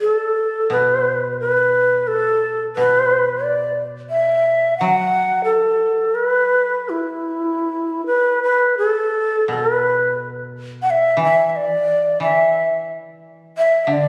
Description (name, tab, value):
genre	japanese traditional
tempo	75-91 BPM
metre	4/4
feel	rubato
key	E suspended pentatonic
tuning	A4 = 440 Hz
part	mellow shakuhachi	melody	0.0-14.1 s	E4 to F#5	-18 LUFS	equal	none
part	koto	accompaniment	0.7-14.1 s	B2 to F#3	-28 LUFS	equal	none
room	light reverb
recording	recorded on a phone in the room, studio reverb, compression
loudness	-18 LUFS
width	mono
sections	0.0-8.4 A section; 8.4-14.1 B section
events	none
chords	none